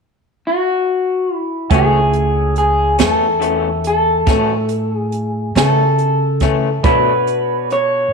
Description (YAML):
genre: slow blues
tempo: 47 BPM (dotted quarters)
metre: 12/8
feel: straight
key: F# minor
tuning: A4 = 440 Hz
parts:
  - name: electric guitar through a small old amp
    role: melody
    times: 0.5-8.1 s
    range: F#4 to C#5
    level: -16 LUFS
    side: left 1 dB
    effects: none
  - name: clear grand piano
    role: accompaniment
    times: 1.7-8.1 s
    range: A3 to G#5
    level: -26 LUFS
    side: right 12 dB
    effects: none
  - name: electric guitar through a small old amp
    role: accompaniment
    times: 1.7-7.1 s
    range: F#2 to D4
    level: -22 LUFS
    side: left 12 dB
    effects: harmonic tremolo
  - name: upright bass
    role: bass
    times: 1.7-8.1 s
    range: C#2 to C#3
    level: -19 LUFS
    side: right 2 dB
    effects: tube saturation
  - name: jazz brush drum kit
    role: drums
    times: 1.7-7.9 s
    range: hi-hat, kick drum, snare drum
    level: -18 LUFS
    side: right 4 dB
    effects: none
room: moderate plate reverb, RT60 1.7 s, small room ambience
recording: 1960s-style stereo with parts hard left and right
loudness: -13 LUFS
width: side -4 dB against mid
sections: 0.0-1.7 A section; 1.7-8.1 B section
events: none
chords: 0.0 N.C.; 1.7 F#m7; 6.8 Bm7